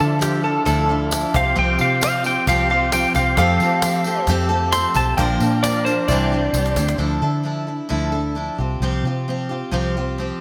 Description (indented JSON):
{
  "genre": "folk rock and heartland rock",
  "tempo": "133 BPM",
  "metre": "4/4",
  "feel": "straight",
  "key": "D minor",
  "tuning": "A4 = 439 Hz",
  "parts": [
    { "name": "electric slide guitar", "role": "second line", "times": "0.0-7.0 s", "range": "G4 to C6", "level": "-23 LUFS", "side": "equal", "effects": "none" },
    { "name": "bright upright piano", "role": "accompaniment", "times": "0.0-7.0 s", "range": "E4 to F5", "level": "-34 LUFS", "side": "equal", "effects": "none" },
    { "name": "picked steel-string acoustic guitar", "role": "accompaniment", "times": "0.0-10.4 s", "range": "Bb2 to Bb4", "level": "-24 LUFS", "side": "equal", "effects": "none" },
    { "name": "tonewheel organ", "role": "sustained chords", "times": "0.0-7.0 s", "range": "E3 to C5", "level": "-32 LUFS", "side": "equal", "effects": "overdrive, slow rotary speaker" },
    { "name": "vintage muted fingered electric bass", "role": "bass", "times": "0.0-10.3 s", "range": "Bb1 to F3", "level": "-25 LUFS", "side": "equal", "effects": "none" },
    { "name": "cajon", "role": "drums", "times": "0.2-7.0 s", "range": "none", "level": "-28 LUFS", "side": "equal", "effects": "none" },
    { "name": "tambourine", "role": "percussion", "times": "0.2-6.9 s", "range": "none", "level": "-36 LUFS", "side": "equal", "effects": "none" }
  ],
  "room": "moderate lush hall reverb, RT60 1.8 s",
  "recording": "bright 1980s-style digital production",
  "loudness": "-19 LUFS",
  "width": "mono",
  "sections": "0.0-7.0 A section; 7.0-10.4 B section",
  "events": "electric slide guitar solo 0.0-7.0; drum fill 6.5-7.0",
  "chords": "0.0 Dmadd9; 1.3 Csus4; 3.4 Fadd9; 5.2 Bb; 6.1 Cadd9; 7.0 Dmadd9; 8.6 Csus4"
}